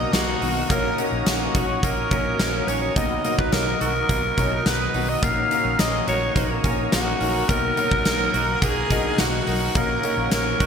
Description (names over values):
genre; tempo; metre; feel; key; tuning
1980s-style pop; 106 BPM; 4/4; straight; unclear; A4 = 440 Hz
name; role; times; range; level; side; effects
raspy alto saxophone; melody; 0.0-10.7 s; Gb4 to F5; -24 LUFS; equal; ping-pong delay
warm concert grand piano; accompaniment; 0.0-10.7 s; Bb2 to A#5; -28 LUFS; left 2 dB; ensemble chorus
sweeping resonant pad; sustained chords; 0.0-10.7 s; F#4 to D#6; -31 LUFS; left 1 dB; chorus
direct-recorded clean electric guitar; riff; 0.0-10.7 s; D#3 to F#4; -31 LUFS; right 5 dB; wide subtle chorus, ping-pong delay
vintage muted fingered electric bass; bass; 0.0-10.7 s; Bb1 to B1; -29 LUFS; equal; none
huge arena drum kit; drums; 0.1-10.7 s; hi-hat, kick drum, snare drum, tambourine; -24 LUFS; equal; gated reverb
analog synth brass; stabs; 0.4-10.7 s; D#3 to Bb4; -34 LUFS; left 1 dB; none
room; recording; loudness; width
moderate lush hall reverb, RT60 1.6 s, studio reverb; bright 1980s-style digital production; -19 LUFS; side -7 dB against mid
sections
0.0-10.7 A section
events
none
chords
0.0 Bmaj7; 0.7 Ebm7/Bb; 3.0 Bmaj7; 5.2 Gb6/Bb; 7.5 Bmaj7; 9.8 Ebm7/Bb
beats
0.13 | 0.70 1.26 1.83 2.40 | 2.96 3.53 4.09 4.66 | 5.23 5.79 6.36 6.92 | 7.49 8.06 8.62 9.19 | 9.76 10.32